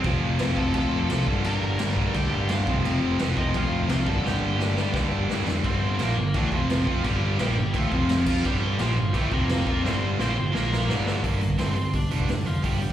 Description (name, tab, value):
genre	punk rock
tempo	172 BPM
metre	4/4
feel	straight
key	G minor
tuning	A4 = 439 Hz
part	crunchy overdriven guitar	riff	0.0-12.9 s	F2 to F4	-29 LUFS	left 5 dB	slapback echo
part	distorted electric guitar	riff	0.0-12.9 s	F2 to F4	-30 LUFS	right 8 dB	overdrive, slapback echo
part	high-gain distorted guitar	riff	0.0-11.2 s	F2 to F4	-31 LUFS	equal	distortion, slapback echo
part	overdriven picked electric bass	bass	0.0-12.9 s	F1 to G2	-27 LUFS	equal	none
part	raw garage drum kit	drums	0.0-12.9 s	crash cymbal, hi-hat, kick drum, snare drum	-29 LUFS	equal	none
part	crunchy overdriven guitar	melody	0.6-12.9 s	F3 to Bb5	-32 LUFS	equal	none
room	studio reverb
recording	live gig heard through the venue's PA, recital hall reverb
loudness	-22 LUFS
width	side -11 dB against mid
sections	0.0-5.6 A section; 5.6-11.2 B section; 11.2-12.9 C section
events	drum fill 4.2-5.6, 9.8-11.2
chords	0.0 F; 1.3 Gm; 2.7 F; 4.1 Gm; 6.5 F5; 6.9 Gm; 7.9 F5; 8.3 Gm; 9.3 F5; 9.7 Gm; 10.5 Bb5; 10.9 Gm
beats	| 0.05 0.40 0.75 1.10 | 1.45 1.80 2.15 2.50 | 2.85 3.20 3.55 3.90 | 4.25 4.60 4.95 5.30 | 5.65 6.00 6.35 6.70 | 7.05 7.39 7.75 8.09 | 8.44 8.79 9.14 9.49 | 9.84 10.19 10.54 10.89 | 11.24 11.59 11.94 12.29 | 12.64